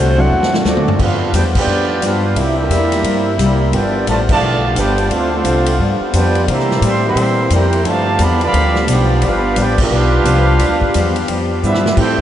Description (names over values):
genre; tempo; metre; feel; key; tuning
jazz, big band swing; 175 BPM; 4/4; swing 63% on 8ths; G major; A4 = 440 Hz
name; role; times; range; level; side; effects
warm clarinet; melody; 0.0-0.5 s; C5 to F#5; -24 LUFS; equal; none
picked steel-string acoustic guitar; accompaniment; 0.0-12.2 s; G2 to F#4; -22 LUFS; left 4 dB; none
clear trombone section; sustained chords; 0.0-12.2 s; C3 to Bb4; -24 LUFS; left 1 dB; none
upright bass; bass; 0.0-12.2 s; G1 to C3; -17 LUFS; equal; none
clear baby grand piano; accompaniment; 0.2-0.6 s; F#3 to A4; -26 LUFS; equal; none
swinging big-band drum kit; drums; 0.4-12.2 s; crash cymbal, hi-hat, kick drum, ride cymbal, snare drum, toms; -21 LUFS; equal; none
warm trombone section; second line; 0.6-12.2 s; D3 to G4; -19 LUFS; right 2 dB; none
mellow trumpet section; melody; 0.7-12.2 s; B3 to C6; -19 LUFS; right 1 dB; none
room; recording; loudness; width
wet huge ambient reverb, RT60 7.7 s; in a vast, echoing space, nothing above 10.5 kHz; -12 LUFS; side -11 dB against mid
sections
1.0-12.2 A section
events
drum fill 0.3-1.0, 11.6-12.0; band accent 1.5, 4.2, 9.7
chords
0.0 D7; 1.0 G7; 2.4 C7; 3.7 G7; 5.1 Dm7; 5.8 G7; 6.5 C7; 7.8 G7